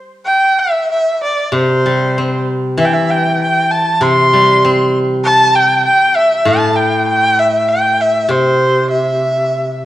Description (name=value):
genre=chinese traditional, Chinese chamber ensemble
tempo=97 BPM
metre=4/4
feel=rubato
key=C gong mode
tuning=A4 = 437 Hz
part: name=clear erhu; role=melody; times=0.3-9.8 s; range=C5 to C6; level=-12 LUFS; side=equal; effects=none
part: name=steel-string zither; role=accompaniment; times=1.5-9.9 s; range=A2 to C4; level=-15 LUFS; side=equal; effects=none
room=wet recital hall reverb, RT60 1.7 s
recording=worn, warbling old tape, cassette tape, warbly pitch drift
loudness=-10 LUFS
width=side -14 dB against mid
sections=0.3-9.9 A section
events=none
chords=none